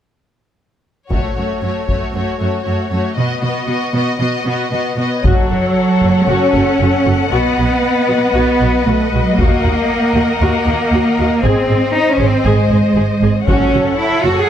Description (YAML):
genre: cinematic, epic orchestral film score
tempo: 117 BPM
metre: 4/4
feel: straight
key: F# dorian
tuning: A4 = 440 Hz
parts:
  - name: warm symphonic violin section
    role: melody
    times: 1.1-5.2 s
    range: C#5 to D#5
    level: -23 LUFS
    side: left 5 dB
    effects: none
  - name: dark symphonic violin section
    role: second line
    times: 1.1-14.5 s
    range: F#4 to F#5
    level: -21 LUFS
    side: left 5 dB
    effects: none
  - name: warm symphonic viola section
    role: accompaniment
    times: 1.1-14.5 s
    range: A3 to B4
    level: -21 LUFS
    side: left 1 dB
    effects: none
  - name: rich symphonic cello section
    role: bass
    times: 1.1-14.5 s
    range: F#2 to G#4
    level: -16 LUFS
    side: right 1 dB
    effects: none
  - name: taiko ensemble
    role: drums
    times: 1.1-2.1, 5.2-6.2, 9.4-10.4, 13.5-14.5 s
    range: none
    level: -18 LUFS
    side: left 1 dB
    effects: none
  - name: warm symphonic double bass section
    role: bass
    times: 5.2-14.3 s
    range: F#1 to D#2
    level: -18 LUFS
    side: right 2 dB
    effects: none
room: moderate scoring stage reverb, RT60 1.7 s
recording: none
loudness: -12 LUFS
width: side -10 dB against mid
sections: 1.1-5.2 A section; 5.2-14.5 B section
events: none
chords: 1.1 F#m; 3.2 B; 5.2 F#m; 7.3 B; 9.4 D#m; 11.4 G#; 13.5 F#m